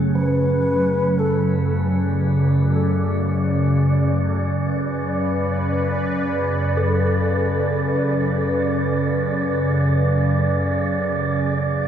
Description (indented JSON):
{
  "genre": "ambient",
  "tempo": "free time",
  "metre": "none",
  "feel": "none",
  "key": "unclear",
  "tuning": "A4 = 440 Hz",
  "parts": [
    { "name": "sweeping resonant pad", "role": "sustained chords", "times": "0.0-11.9 s", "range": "F#2 to B4", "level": "-23 LUFS", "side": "right 1 dB", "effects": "chorus, shimmer reverb" },
    { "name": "organ-like drone", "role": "drone", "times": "0.0-11.9 s", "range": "F#2 to C#3", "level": "-21 LUFS", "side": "equal", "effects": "ensemble chorus, built-in reverb" },
    { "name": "mellow long shakuhachi", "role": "melody", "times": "0.2-1.7 s", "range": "A4 to B4", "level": "-27 LUFS", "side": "left 1 dB", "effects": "shimmer reverb, diffuse ambient delay" },
    { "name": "gamelan-type bronze metallophone", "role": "arpeggios", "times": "0.2-11.9 s", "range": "F#3 to A4", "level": "-32 LUFS", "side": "right 2 dB", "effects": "shimmer reverb, diffuse ambient delay" },
    { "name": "wind-like tuned noise texture", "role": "texture", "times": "2.1-11.9 s", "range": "D5", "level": "-26 LUFS", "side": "right 4 dB", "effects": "built-in reverb, shimmer reverb" }
  ],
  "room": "wet cathedral reverb, RT60 5.6 s",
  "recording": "in a vast, echoing space",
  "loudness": "-18 LUFS",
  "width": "side -9 dB against mid",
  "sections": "0.0-11.9 A section",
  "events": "none",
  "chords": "0.0 F#m; 1.7 Bmadd9/F#"
}